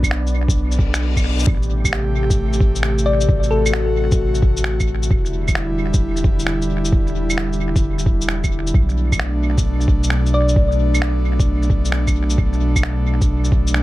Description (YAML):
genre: future garage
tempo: 132 BPM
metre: 4/4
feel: swing 67% on 16ths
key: unclear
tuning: A4 = 440 Hz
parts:
  - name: airy breathy pad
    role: sustained chords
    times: 0.0-13.8 s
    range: B2 to G4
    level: -23 LUFS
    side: equal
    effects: chorus, sidechain pumping
  - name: soft dub sub bass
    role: bass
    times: 0.0-13.8 s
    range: E1 to B1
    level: -20 LUFS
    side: equal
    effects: sidechain pumping
  - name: electronic kick drum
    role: drums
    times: 0.0-13.6 s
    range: none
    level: -18 LUFS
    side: equal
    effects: none
  - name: electronic shaker, claves and finger snaps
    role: drums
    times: 0.0-13.8 s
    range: none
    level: -25 LUFS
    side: right 1 dB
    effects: tape echo
  - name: wind-like tuned noise texture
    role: texture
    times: 0.0-1.5 s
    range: D5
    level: -39 LUFS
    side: right 3 dB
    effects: none
  - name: reverse cymbal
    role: sound effects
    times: 0.8-1.5 s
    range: none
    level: -28 LUFS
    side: left 6 dB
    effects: none
  - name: thumb-piano-like synth pluck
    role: melody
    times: 3.1-3.9, 10.3-10.7 s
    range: A4 to D5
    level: -23 LUFS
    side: left 4 dB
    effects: chorus, analog delay
room: little or no reverb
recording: echo-heavy mix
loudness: -15 LUFS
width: side -17 dB against mid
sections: 0.0-1.5 A section; 1.5-13.8 B section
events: reverse cymbal 0.8-1.5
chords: 0.0 Bm; 1.5 Am7; 5.1 Em7; 8.7 Bm7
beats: 0.10 0.56 1.01 | 1.47 1.92 2.38 2.83 | 3.29 3.74 4.20 4.65 | 5.11 5.56 6.01 6.47 | 6.92 7.38 7.83 8.29 | 8.74 9.20 9.65 10.11 | 10.56 11.01 11.47 11.92 | 12.38 12.83 13.29 13.74